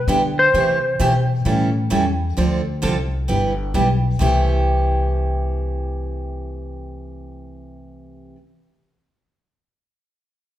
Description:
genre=country, western swing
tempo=131 BPM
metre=4/4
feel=swing 68% on 8ths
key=C major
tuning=A4 = 441 Hz
part: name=clean lap steel guitar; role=melody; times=0.0-1.3 s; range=C5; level=-17 LUFS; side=left 1 dB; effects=none
part: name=upright bass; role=bass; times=0.0-8.3 s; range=G1 to D3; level=-21 LUFS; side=left 1 dB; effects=none
part: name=picked steel-string acoustic guitar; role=accompaniment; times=0.1-8.4 s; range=C3 to A4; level=-22 LUFS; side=right 2 dB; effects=none
room=moderate large studio reverb, RT60 1.2 s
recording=band playing live in one room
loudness=-17 LUFS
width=side -12 dB against mid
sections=0.0-4.2 A section; 4.2-7.9 B section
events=none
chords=0.0 G6; 0.5 C6; 1.5 A7; 2.4 Dm7; 3.3 G6; 4.2 C6

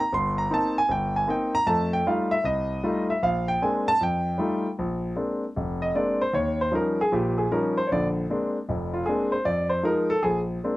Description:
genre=solo jazz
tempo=154 BPM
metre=4/4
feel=swing 65% on 8ths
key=Bb mixolydian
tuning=A4 = 440 Hz
part: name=clear grand piano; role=solo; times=0.0-10.8 s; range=F1 to C6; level=-22 LUFS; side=equal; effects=none
room=light reverb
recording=rough home demo mix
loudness=-22 LUFS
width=side -17 dB against mid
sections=0.0-4.8 A section; 4.8-10.8 A section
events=grand piano solo 0.0-4.8, 4.8-10.8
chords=0.0 Cm7; 1.7 F9; 3.2 Bb9; 4.0 F9; 4.8 Bb9; 6.3 Eb9; 7.9 Bb9; 9.4 Fm7; 10.2 Bb9

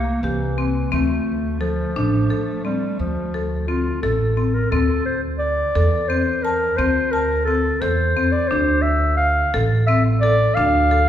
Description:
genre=contemporary instrumental, chamber music in an uneven meter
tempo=174 BPM (eighths)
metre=11/8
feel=straight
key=D minor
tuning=A4 = 442 Hz
part: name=warm clarinet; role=melody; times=0.0-11.1 s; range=E3 to F5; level=-21 LUFS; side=equal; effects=none
part: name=dark cello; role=second line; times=0.0-4.3 s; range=A3 to Bb3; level=-32 LUFS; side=right 5 dB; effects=none
part: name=marimba with hard mallets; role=arpeggios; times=0.0-11.1 s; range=Bb3 to A5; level=-23 LUFS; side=left 4 dB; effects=none
part: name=upright bass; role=bass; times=0.0-11.1 s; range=A1 to E2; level=-22 LUFS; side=right 1 dB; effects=none
room=wet recital hall reverb, RT60 1.7 s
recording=recorded in a church or concert hall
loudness=-17 LUFS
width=side -10 dB against mid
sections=0.0-4.7 A section; 4.7-11.1 B section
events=none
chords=0.0 C7; 0.9 Dm7; 4.7 Am/D; 8.5 Dm

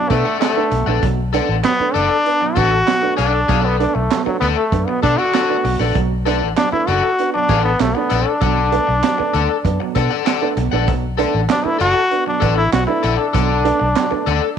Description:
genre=funk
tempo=97 BPM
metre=4/4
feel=straight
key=B minor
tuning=A4 = 441 Hz
part: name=brilliant trombone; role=melody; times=0.0-14.6 s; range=F#3 to F#4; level=-18 LUFS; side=left 1 dB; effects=slapback echo
part: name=dark upright piano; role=stabs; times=0.0-14.3 s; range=B2 to D4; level=-23 LUFS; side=right 13 dB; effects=none
part: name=electric guitar at the edge of break-up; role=accompaniment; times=0.1-14.5 s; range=A4 to F#5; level=-22 LUFS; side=left 14 dB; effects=none
part: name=vintage muted fingered electric bass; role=bass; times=0.1-14.4 s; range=F#1 to B2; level=-20 LUFS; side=left 1 dB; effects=none
part: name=crunchy breakbeat drum kit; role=drums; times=0.1-14.4 s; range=handclaps, hi-hat, kick drum, snare drum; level=-22 LUFS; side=right 6 dB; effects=none
room=light reverb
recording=1960s-style stereo with parts hard left and right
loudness=-14 LUFS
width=side -8 dB against mid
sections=0.0-14.6 A section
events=trombone solo 0.0-14.6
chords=0.0 Bm7

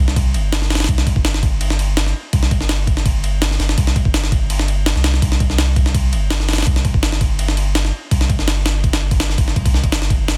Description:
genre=drum and bass, jungle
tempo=166 BPM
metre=4/4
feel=straight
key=unclear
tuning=A4 = 438 Hz
part: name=saturated sub bass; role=bass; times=0.0-10.4 s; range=G1 to C2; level=-20 LUFS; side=equal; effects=none
part: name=jungle sampler-style drum kit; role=drums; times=0.1-10.4 s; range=kick drum, ride cymbal, snare drum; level=-20 LUFS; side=equal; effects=none
room=little or no reverb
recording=dense, heavily limited modern master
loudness=-17 LUFS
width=mono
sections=0.0-10.4 A section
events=none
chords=none

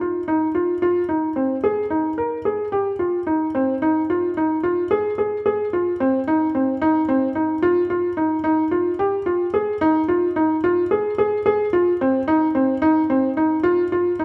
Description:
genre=contemporary instrumental, contemporary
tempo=220 BPM (eighths)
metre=11/8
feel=straight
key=F minor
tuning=A4 = 443 Hz
part: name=felt-muted upright piano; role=solo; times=0.0-14.2 s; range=C4 to Bb4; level=-20 LUFS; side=equal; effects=none
room=moderate concert hall reverb, RT60 2.0 s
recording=none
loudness=-20 LUFS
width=mono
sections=0.0-3.8 A section; 3.8-14.2 B section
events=none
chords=none

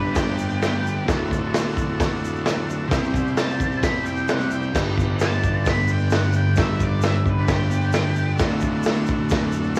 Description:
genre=garage rock duo or trio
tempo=131 BPM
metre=4/4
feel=straight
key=unclear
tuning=A4 = 441 Hz
part: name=octave-fuzz lead guitar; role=melody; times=0.0-8.4 s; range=G4 to B5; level=-30 LUFS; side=equal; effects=distortion, cassette tape
part: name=overdriven combo organ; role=sustained chords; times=0.0-9.8 s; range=D4 to C5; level=-34 LUFS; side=equal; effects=cassette tape
part: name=fuzz guitar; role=riff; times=0.0-9.8 s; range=D2 to C4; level=-25 LUFS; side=equal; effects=distortion, cassette tape
part: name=raw garage drum kit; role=drums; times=0.2-9.8 s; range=crash cymbal, hi-hat, kick drum, snare drum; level=-26 LUFS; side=equal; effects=cassette tape
part: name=tube shaker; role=percussion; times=0.2-9.8 s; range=none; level=-45 LUFS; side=equal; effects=none
room=little or no reverb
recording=home recording on cassette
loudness=-22 LUFS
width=mono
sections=0.0-9.8 A section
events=none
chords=0.0 G; 1.1 D; 2.9 C; 4.7 G; 8.4 D

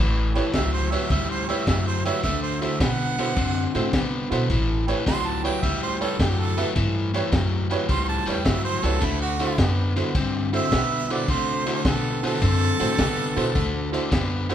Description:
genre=electric blues shuffle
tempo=106 BPM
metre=4/4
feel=swing 68% on 8ths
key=unclear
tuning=A4 = 440 Hz
part: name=overdriven electric guitar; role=riff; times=0.0-14.5 s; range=A2 to C4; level=-26 LUFS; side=left 3 dB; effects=none
part: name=upright bass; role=bass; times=0.0-14.5 s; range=A1 to C3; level=-26 LUFS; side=equal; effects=none
part: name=bright upright piano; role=accompaniment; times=0.3-14.5 s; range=E4 to E5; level=-30 LUFS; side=right 5 dB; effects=none
part: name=crunchy breakbeat drum kit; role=drums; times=0.4-14.5 s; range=kick drum, ride cymbal, snare drum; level=-27 LUFS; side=equal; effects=none
part: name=clear harmonica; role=second line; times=0.5-13.9 s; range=E4 to C6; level=-28 LUFS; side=right 5 dB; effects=none
room=moderate large studio reverb, RT60 1.3 s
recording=band playing live in one room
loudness=-21 LUFS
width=side -10 dB against mid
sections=0.0-14.5 A section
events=harmonica solo 0.0-14.5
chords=0.0 A9; 2.2 D9; 4.5 A9; 9.0 D9

